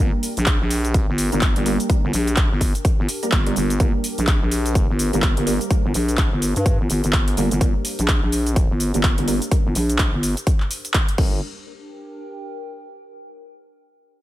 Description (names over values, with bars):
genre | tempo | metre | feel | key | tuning
bass house | 126 BPM | 4/4 | swing 59% on 16ths | G minor | A4 = 441 Hz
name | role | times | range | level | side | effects
orchestra-hit-like synth stab | stabs | 0.0-11.4 s | G3 to Bb4 | -28 LUFS | right 2 dB | built-in reverb, sidechain pumping, ping-pong delay
growling FM bass | bass | 0.0-11.4 s | G1 to G2 | -21 LUFS | equal | overdrive, sidechain pumping
big-room dance drum kit | drums | 0.0-11.3 s | cabasa, crash cymbal, handclaps, hi-hat | -25 LUFS | equal | overdrive, studio reverb
warbly tape-like pad | texture | 0.0-13.3 s | D4 to G5 | -35 LUFS | left 2 dB | chorus, built-in reverb, sidechain pumping
electronic kick drum | drums | 0.5-11.3 s | none | -19 LUFS | equal | overdrive, studio reverb
room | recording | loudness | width
little or no reverb | none | -17 LUFS | side -15 dB against mid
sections
0.0-11.4 A section; 11.4-13.3 B section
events
fade-out on ambient pad 0.0-11.4; filter sweep on FM bass 0.0-11.4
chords
0.0 Gm